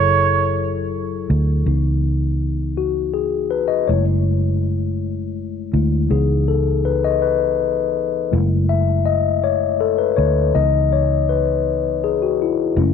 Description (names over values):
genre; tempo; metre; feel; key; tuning
slow six-eight R&B; 54 BPM (dotted quarters); 6/8; straight; C# minor; A4 = 441 Hz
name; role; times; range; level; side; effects
warm flugelhorn; melody; 0.0-0.9 s; C#5; -18 LUFS; right 8 dB; slapback echo
mellow tine electric piano; accompaniment; 0.0-12.9 s; E3 to E5; -19 LUFS; left 9 dB; medium stereo tremolo
vintage muted fingered electric bass; bass; 0.0-12.9 s; F#1 to D2; -20 LUFS; right 1 dB; none
room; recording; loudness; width
light reverb, small room ambience; 1960s-style stereo with parts hard left and right; -16 LUFS; side -7 dB against mid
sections
0.0-1.7 A section; 1.7-12.9 B section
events
tine electric piano solo 1.7-12.9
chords
0.0 F#m9; 1.7 C#m9; 3.9 F#m9; 6.1 C#m9; 8.3 F#m9; 10.5 C#m9